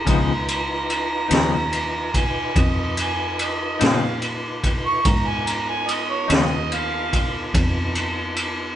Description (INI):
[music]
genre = slow blues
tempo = 48 BPM (dotted quarters)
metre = 12/8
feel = straight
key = unclear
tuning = A4 = 441 Hz
[part]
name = mellow harmonica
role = second line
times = 0.0-7.5 s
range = C#5 to C#6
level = -25 LUFS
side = right 3 dB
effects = overdrive
[part]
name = clean electric guitar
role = accompaniment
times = 0.0-6.6 s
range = C#3 to D#4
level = -24 LUFS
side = left 6 dB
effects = tremolo
[part]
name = tonewheel organ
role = sustained chords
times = 0.0-8.8 s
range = B3 to B4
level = -31 LUFS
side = right 1 dB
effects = chorus vibrato, slow rotary speaker
[part]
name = fingered electric bass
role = bass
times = 0.0-8.8 s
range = C#2 to A#2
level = -27 LUFS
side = equal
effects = none
[part]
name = raw garage drum kit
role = drums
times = 0.1-8.6 s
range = kick drum, ride cymbal, snare drum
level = -22 LUFS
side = equal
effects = none
[sound]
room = moderate stone room reverb, RT60 1.2 s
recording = band playing live in one room, nothing above 10.8 kHz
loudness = -19 LUFS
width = side -11 dB against mid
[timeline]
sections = 0.0-8.8 A section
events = harmonica solo 0.0-8.8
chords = 0.1 C#9